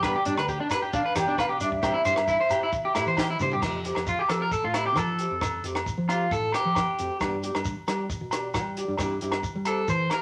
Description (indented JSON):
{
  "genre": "highlife guitar band",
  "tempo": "134 BPM",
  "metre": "4/4",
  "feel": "straight",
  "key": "F major",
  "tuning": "A4 = 439 Hz",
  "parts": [
    { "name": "breathy mellow concert flute", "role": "melody", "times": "0.0-3.1 s", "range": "E5 to G5", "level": "-29 LUFS", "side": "equal", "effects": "none" },
    { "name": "picked acoustic archtop guitar", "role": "accompaniment", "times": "0.0-10.2 s", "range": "E3 to G4", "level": "-37 LUFS", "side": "equal", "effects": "none" },
    { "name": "electric guitar at the edge of break-up", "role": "arpeggios", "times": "0.0-10.2 s", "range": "D4 to C5", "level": "-29 LUFS", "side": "equal", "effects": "none" },
    { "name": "fingered electric bass", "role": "bass", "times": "0.0-10.1 s", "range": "D2 to G3", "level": "-35 LUFS", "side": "equal", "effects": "none" },
    { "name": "compact cocktail drum kit", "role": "drums", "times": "0.0-10.2 s", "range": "crash cymbal, hi-hat, kick drum, rim click, snare drum, toms", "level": "-36 LUFS", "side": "equal", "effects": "none" },
    { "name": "agogo bells", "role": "percussion", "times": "0.0-10.2 s", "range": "none", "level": "-36 LUFS", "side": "equal", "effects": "none" },
    { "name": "shekere", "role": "percussion", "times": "0.0-10.2 s", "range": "none", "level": "-41 LUFS", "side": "equal", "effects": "none" }
  ],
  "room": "wet studio reverb, RT60 0.8 s",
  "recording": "none",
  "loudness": "-26 LUFS",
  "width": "mono",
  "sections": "0.0-3.6 A section; 3.6-10.2 B section",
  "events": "drum fill 3.2-3.6; clean electric guitar solo 3.6-10.2",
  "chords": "0.0 G; 1.8 C/G; 3.6 Fadd9; 7.2 G; 9.0 C/G"
}